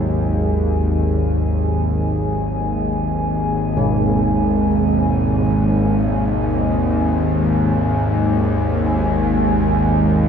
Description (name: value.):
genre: dark ambient drone.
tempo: free time.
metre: none.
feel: none.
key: unclear.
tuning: A4 = 440 Hz.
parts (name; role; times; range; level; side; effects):
dark analog pad; sustained chords; 0.0-10.3 s; G#3 to G#5; -23 LUFS; equal; chorus, phaser.
carillon bells; arpeggios; 0.0-10.0 s; G#2 to D#3; -23 LUFS; right 1 dB; tape echo.
bowed-like drone; drone; 0.0-10.3 s; G#1 to D#2; -18 LUFS; left 1 dB; built-in reverb.
bubbling stepped-filter texture; texture; 8.8-10.3 s; G#5; -24 LUFS; right 1 dB; chorus, built-in reverb.
room: wet cathedral reverb, RT60 6.2 s.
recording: in a vast, echoing space.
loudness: -16 LUFS.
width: side -7 dB against mid.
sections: 0.0-10.3 A section.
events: fade-in on analog synth pad 0.0-10.3.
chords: 0.0 G#5.